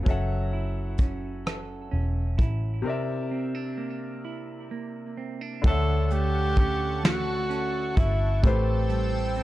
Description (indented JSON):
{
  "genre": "slow six-eight R&B",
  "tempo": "43 BPM (dotted quarters)",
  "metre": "6/8",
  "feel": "straight",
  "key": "D major",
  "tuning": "A4 = 438 Hz",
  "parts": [
    { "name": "semi-hollow electric guitar", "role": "second line", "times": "0.0-9.4 s", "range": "A2 to A4", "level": "-33 LUFS", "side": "right 5 dB", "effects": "tape echo" },
    { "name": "clear concert grand piano", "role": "accompaniment", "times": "0.0-9.4 s", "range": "A2 to F#5", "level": "-34 LUFS", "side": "left 4 dB", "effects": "plate reverb" },
    { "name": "vintage muted fingered electric bass", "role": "bass", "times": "0.0-9.4 s", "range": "E1 to D2", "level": "-28 LUFS", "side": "equal", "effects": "none" },
    { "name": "soft brush drum kit", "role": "drums", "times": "0.1-9.4 s", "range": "hi-hat, kick drum, rim click, snare drum", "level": "-23 LUFS", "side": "equal", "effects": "none" },
    { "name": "chorused pulse-width pad", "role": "sustained chords", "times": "6.0-9.4 s", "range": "A4 to E6", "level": "-38 LUFS", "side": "equal", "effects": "none" },
    { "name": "warm tenor saxophone", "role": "melody", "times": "5.7-9.4 s", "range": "C4 to A4", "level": "-29 LUFS", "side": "equal", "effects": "plate reverb" }
  ],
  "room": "little or no reverb",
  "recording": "dark, warm production",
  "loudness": "-24 LUFS",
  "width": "side -16 dB against mid",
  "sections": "0.0-5.6 A section; 5.6-9.4 B section",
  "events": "break 2.9-5.6",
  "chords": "0.1 F#m7; 2.9 C9; 5.6 Dmaj7; 8.4 Am7",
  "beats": "| 0.06 1.46 | 2.85 4.25 | 5.64 7.04 | 8.44"
}